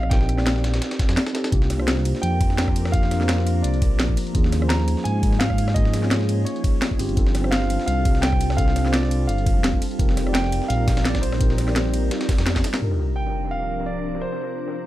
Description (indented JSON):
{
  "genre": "liquid drum and bass",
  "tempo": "170 BPM",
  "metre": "4/4",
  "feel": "swing 54% on 16ths",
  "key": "C minor",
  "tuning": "A4 = 438 Hz",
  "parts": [
    { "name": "clear concert grand piano", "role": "melody", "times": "0.0-14.9 s", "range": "C5 to Bb5", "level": "-30 LUFS", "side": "right 2 dB", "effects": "vintage 12-bit sampler grit, dub echo" },
    { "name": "mellow tine electric piano", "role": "accompaniment", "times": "0.0-14.9 s", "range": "C3 to D5", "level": "-28 LUFS", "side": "equal", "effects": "dub echo" },
    { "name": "dark detuned saw bass", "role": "bass", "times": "0.0-12.6 s", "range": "F1 to Ab2", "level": "-22 LUFS", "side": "equal", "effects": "none" },
    { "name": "drum and bass drum kit", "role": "drums", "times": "0.0-12.8 s", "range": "hi-hat, ride cymbal, rim click, snare drum", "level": "-26 LUFS", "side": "equal", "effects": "overdrive" },
    { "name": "dusty soul sampler-style drum kit", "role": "drums", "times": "0.1-14.8 s", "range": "hi-hat, snare drum", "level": "-33 LUFS", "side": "equal", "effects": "high-pass filter on snare, low-pass filter on snare, high-pass filter on hats, low-pass filter on hats" },
    { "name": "electronic kick drum", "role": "drums", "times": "0.1-12.6 s", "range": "none", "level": "-21 LUFS", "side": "equal", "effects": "none" },
    { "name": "glassy FM pad", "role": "sustained chords", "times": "2.1-14.9 s", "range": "F3 to Bb4", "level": "-30 LUFS", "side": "equal", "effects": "ensemble chorus, built-in reverb" },
    { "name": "sub drop", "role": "sound effects", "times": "12.8-14.2 s", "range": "none", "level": "-27 LUFS", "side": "equal", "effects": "none" }
  ],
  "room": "light reverb",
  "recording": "dark, warm production",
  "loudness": "-19 LUFS",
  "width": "side -15 dB against mid",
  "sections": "0.0-12.8 A section; 12.8-14.9 B section",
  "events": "drop 0.0-12.8; drum fill 12.6; impact 12.8-14.2; filter sweep on ambient pad 12.8-14.9",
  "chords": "0.0 F9sus4 (rootless); 1.5 C9sus4; 4.3 Eb9sus4; 7.0 G9sus4; 10.0 F9sus4; 12.8 C9sus4",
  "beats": "| 0.11 0.47 0.82 1.17 | 1.52 1.88 2.23 2.58 | 2.94 3.29 3.64 3.99 | 4.35 4.70 5.05 5.41 | 5.76 6.11 6.46 6.82 | 7.17 7.52 7.88 8.23 | 8.58 8.94 9.29 9.64 | 9.99 10.35 10.70 11.05 | 11.41 11.76 12.11 12.46 | 12.82 13.17 13.52 13.88 | 14.23 14.58"
}